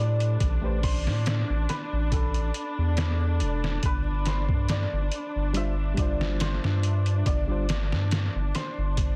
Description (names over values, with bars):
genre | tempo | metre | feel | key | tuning
trip hop | 70 BPM | 4/4 | swing 53% on 16ths | unclear | A4 = 440 Hz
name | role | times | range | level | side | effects
santur | melody | 0.0-9.2 s | A4 to E5 | -38 LUFS | equal | tape echo
bright reed electric piano | accompaniment | 0.0-7.7 s | G3 to C5 | -37 LUFS | equal | harmonic tremolo
muted studio string section | sustained chords | 0.0-9.2 s | D4 | -38 LUFS | equal | none
round analog bass | bass | 0.0-9.2 s | E1 to A2 | -28 LUFS | equal | none
trip hop sampler-style drum kit | drums | 0.2-9.2 s | hi-hat, kick drum, snare drum | -31 LUFS | equal | none
room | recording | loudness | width
little or no reverb | dense, heavily limited modern master, vinyl crackle | -26 LUFS | mono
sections
0.0-9.2 A section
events
none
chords
0.0 Am9; 3.8 G7sus4